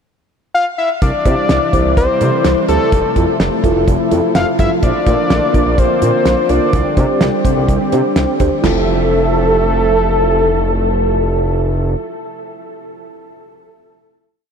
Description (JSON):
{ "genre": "synth-pop", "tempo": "126 BPM", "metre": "4/4", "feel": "straight", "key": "F major", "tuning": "A4 = 443 Hz", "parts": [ { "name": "fat analog lead", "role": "melody", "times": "0.5-11.9 s", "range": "A4 to F5", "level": "-17 LUFS", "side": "left 2 dB", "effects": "chorus, ping-pong delay" }, { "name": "warm analog pad", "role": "sustained chords", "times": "1.0-11.9 s", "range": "C3 to E5", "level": "-19 LUFS", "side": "equal", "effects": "chorus" }, { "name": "smooth gliding synth bass", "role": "bass", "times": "1.0-12.0 s", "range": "F1 to C3", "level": "-18 LUFS", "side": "equal", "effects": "none" }, { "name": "damped 70s drum kit", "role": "drums", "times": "1.0-8.7 s", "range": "crash cymbal, hi-hat, kick drum, snare drum, toms", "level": "-18 LUFS", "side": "equal", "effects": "none" }, { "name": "muted felt-like synth keys", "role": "accompaniment", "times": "1.3-12.0 s", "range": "D4 to C5", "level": "-20 LUFS", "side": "right 2 dB", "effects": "chorus" } ], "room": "moderate huge ambient reverb, RT60 7.7 s", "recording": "dreamy mix soaked in reverb", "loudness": "-12 LUFS", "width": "side -6 dB against mid", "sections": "0.0-1.0 pickup bar; 1.0-8.6 pre-chorus; 8.6-12.4 final chord", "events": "none", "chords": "0.0 N.C.; 1.0 C; 2.9 Fmaj7; 4.8 Bb; 6.7 Csus2; 8.6 Fmaj7" }